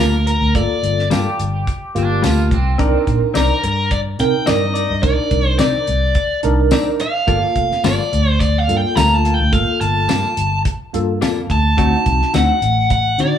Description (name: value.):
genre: straight-eighth soul blues.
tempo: 107 BPM.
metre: 4/4.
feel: straight.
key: G minor.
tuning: A4 = 440 Hz.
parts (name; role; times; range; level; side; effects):
overdriven electric guitar; melody; 0.0-13.4 s; Bb4 to Bb5; -18 LUFS; left 1 dB; spring reverb.
tine electric piano; accompaniment; 0.0-13.4 s; Bb3 to Bb4; -21 LUFS; right 3 dB; medium stereo tremolo.
direct-recorded clean electric guitar; stabs; 0.0-12.5 s; D3 to D5; -23 LUFS; left 6 dB; spring reverb.
vintage muted fingered electric bass; bass; 0.0-13.3 s; F1 to D3; -18 LUFS; equal; none.
damped 70s drum kit; drums; 0.0-13.3 s; hi-hat, kick drum, snare drum, tambourine; -21 LUFS; equal; none.
electric guitar at the edge of break-up; second line; 1.1-3.2 s; C4 to G4; -25 LUFS; right 2 dB; tremolo, digital delay.
room: moderate small room reverb, RT60 0.5 s.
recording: band playing live in one room, small room ambience.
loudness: -14 LUFS.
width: side -9 dB against mid.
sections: 0.0-13.4 A section.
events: none.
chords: 0.0 Gm9; 2.8 Cm9; 7.3 Gm9; 11.8 D7b9.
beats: | 0.54 1.10 1.67 2.23 | 2.79 3.35 3.91 4.47 | 5.03 5.59 6.16 6.72 | 7.28 7.84 8.40 8.97 | 9.53 10.09 10.65 11.22 | 11.78 12.34 12.91.